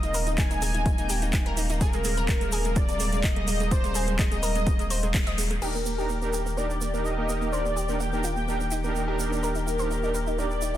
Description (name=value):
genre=progressive house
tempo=126 BPM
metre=4/4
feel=straight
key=Eb major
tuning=A4 = 440 Hz
part: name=wide unison lead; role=melody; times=0.0-10.8 s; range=Bb4 to Ab5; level=-31 LUFS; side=left 1 dB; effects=analog chorus, sidechain pumping, tape echo
part: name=muted chamber string section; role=sustained chords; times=0.0-10.8 s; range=C3 to G4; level=-35 LUFS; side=left 2 dB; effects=sidechain pumping
part: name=analog pluck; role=arpeggios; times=0.0-10.8 s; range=Ab3 to Eb5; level=-33 LUFS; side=right 1 dB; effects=chorus, sidechain pumping, tape echo
part: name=saturated sub bass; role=bass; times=0.0-10.8 s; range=Eb1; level=-29 LUFS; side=equal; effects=sidechain pumping
part: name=house drum kit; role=drums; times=0.0-5.7 s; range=crash cymbal, handclaps, hi-hat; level=-33 LUFS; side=equal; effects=overdrive
part: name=tube shaker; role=percussion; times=0.0-10.8 s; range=none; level=-38 LUFS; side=right 6 dB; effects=none
part: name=backwards swelling texture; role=texture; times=0.0-5.6 s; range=Bb5 to G6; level=-45 LUFS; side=equal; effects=none
part: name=electronic kick drum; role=drums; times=0.4-5.2 s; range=none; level=-25 LUFS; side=equal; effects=none
part: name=soft supersaw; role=stabs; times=5.6-10.8 s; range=Bb3 to Bb4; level=-32 LUFS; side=right 3 dB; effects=sidechain pumping, low-pass filter, tape echo
room=digital ambience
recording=dense, heavily limited modern master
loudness=-24 LUFS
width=side -12 dB against mid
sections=0.0-5.6 A section; 5.6-10.8 B section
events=band accent 5.1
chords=0.0 Abadd9/Eb; 5.6 Ebmaj7